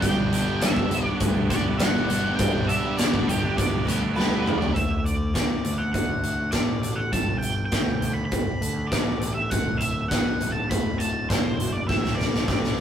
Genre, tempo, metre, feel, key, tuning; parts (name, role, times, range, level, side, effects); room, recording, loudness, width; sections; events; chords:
quiet-loud alternative rock; 101 BPM; 4/4; straight; D major; A4 = 440 Hz
octave-fuzz lead guitar; melody; 0.0-12.8 s; G4 to B5; -29 LUFS; right 2 dB; distortion
picked steel-string acoustic guitar; arpeggios; 0.0-12.8 s; D2 to G4; -33 LUFS; left 1 dB
sludgy distorted guitar; riff; 0.0-4.8 s; G2 to G4; -30 LUFS; left 2 dB; overdrive
tight distorted guitar; riff; 0.0-4.7 s; G2 to G4; -31 LUFS; right 4 dB; distortion
fuzz picked electric bass; bass; 0.0-12.8 s; D1 to D2; -29 LUFS; equal; overdrive
huge arena drum kit; drums; 0.0-12.8 s; hi-hat, kick drum, snare drum, toms; -24 LUFS; equal
light reverb; rough rehearsal-room recording, warm saturation; -22 LUFS; side -9 dB against mid
0.0-4.8 A section; 4.8-12.8 B section
lead electric guitar solo 0.0-4.8; drum fill 4.2-4.8, 11.9-12.8
0.0 G; 4.8 D; 7.1 G; 9.5 D